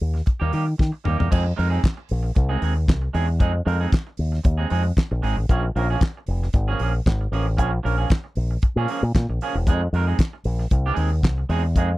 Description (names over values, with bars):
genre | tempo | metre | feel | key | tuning
disco | 115 BPM | 4/4 | straight | F minor | A4 = 442 Hz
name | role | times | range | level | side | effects
fingered electric bass with an envelope filter | bass | 0.0-12.0 s | E1 to Eb3 | -21 LUFS | equal | none
clean electric guitar | accompaniment | 0.1-11.9 s | F3 to Bb4 | -27 LUFS | right 5 dB | none
damped 70s drum kit | drums | 0.2-11.9 s | crash cymbal, handclaps, hi-hat, kick drum, snare drum, toms | -19 LUFS | equal | none
room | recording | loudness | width
little or no reverb | dry, close 1970s-style studio recording | -19 LUFS | side -18 dB against mid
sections
0.0-1.3 A section; 1.3-12.0 B section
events
drum fill 0.8-1.3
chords
0.0 Eb; 1.3 Fm7; 5.5 Bbm7; 9.7 Fm7